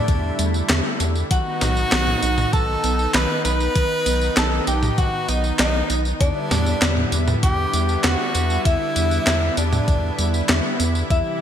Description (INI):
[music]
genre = synthwave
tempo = 98 BPM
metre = 4/4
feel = straight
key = E minor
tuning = A4 = 440 Hz
[part]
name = clear tenor saxophone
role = melody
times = 0.0-11.4 s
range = D4 to B4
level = -25 LUFS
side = equal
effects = digital delay
[part]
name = soft synth bell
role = second line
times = 0.0-11.4 s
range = D5 to B5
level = -30 LUFS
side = left 1 dB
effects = chorus, digital delay
[part]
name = lush unison pad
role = sustained chords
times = 0.0-11.4 s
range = C3 to E4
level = -27 LUFS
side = equal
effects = chorus, sidechain pumping
[part]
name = thumb-piano-like synth pluck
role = arpeggios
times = 0.1-11.4 s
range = D3 to D#4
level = -31 LUFS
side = right 4 dB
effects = chorus, digital delay
[part]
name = round analog bass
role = bass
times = 0.1-11.2 s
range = B1 to E2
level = -22 LUFS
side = equal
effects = sidechain pumping
[part]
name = clean 12-bit digital drum machine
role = drums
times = 0.1-11.2 s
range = handclaps, hi-hat, snare drum, tambourine, toms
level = -23 LUFS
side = equal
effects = gated reverb
[part]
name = electronic kick drum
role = drums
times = 0.1-11.2 s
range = none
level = -20 LUFS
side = equal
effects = none
[sound]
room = moderate lush hall reverb, RT60 1.9 s, digital ambience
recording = bright 1980s-style digital production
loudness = -17 LUFS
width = side -9 dB against mid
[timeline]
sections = 0.0-11.4 A section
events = none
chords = 0.0 Em7; 1.3 B; 6.2 Em7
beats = 0.09 0.70 | 1.31 1.92 2.53 3.15 | 3.76 4.37 4.98 5.59 | 6.21 6.82 7.43 8.04 | 8.66 9.27 9.88 10.49 | 11.11